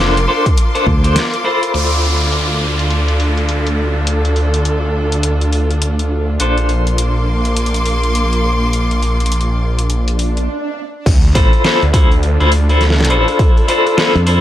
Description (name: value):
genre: glitch hop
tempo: 103 BPM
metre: 4/4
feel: swing 61% on 16ths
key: D minor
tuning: A4 = 440 Hz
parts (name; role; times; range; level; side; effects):
- clean electric guitar; stabs; 0.0-14.4 s; D4 to C5; -17 LUFS; left 2 dB; tremolo, sidechain pumping, low-pass filter, analog delay
- phased detuned saw bass; bass; 0.0-13.3 s; F1 to D2; -15 LUFS; equal; phaser, overdrive
- clear studio string section; texture; 0.0-14.4 s; Bb3 to D6; -20 LUFS; equal; sidechain pumping
- dubstep drum kit; drums; 0.2-14.4 s; crash cymbal, hi-hat, rim click, snare drum; -21 LUFS; left 1 dB; low-pass filter on hats, low-pass filter on snare, low-pass filter on cymbals, low-pass filter on room
- electronic kick drum; drums; 0.5-1.0, 11.1-13.5 s; none; -12 LUFS; equal; none
- modern bright fingered electric bass; bass; 0.9-1.2, 14.2-14.4 s; D2 to F2; -13 LUFS; equal; tube saturation
- downlifter and swell; sound effects; 1.7-6.4, 10.1-11.1 s; none; -23 LUFS; right 1 dB; none
room: little or no reverb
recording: dry, gritty hardware recording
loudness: -12 LUFS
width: side -12 dB against mid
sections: 0.0-1.7 A section; 1.7-11.1 B section; 11.1-14.4 C section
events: break 1.2-1.7; filter sweep on clean electric guitar 1.7-11.1; swell 10.1-11.1; stop 10.5-11.1; drop 11.1-14.4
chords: 0.0 Bbmaj7; 1.7 Dm7; 6.4 Bbmaj7; 11.1 Dm7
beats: 0.58 1.16 | 1.74 2.32 2.91 3.49 | 4.07 4.65 5.24 5.82 | 6.40 6.98 7.57 8.15 | 8.73 9.31 9.90 10.48 | 11.06 11.64 12.23 12.81 | 13.39 13.97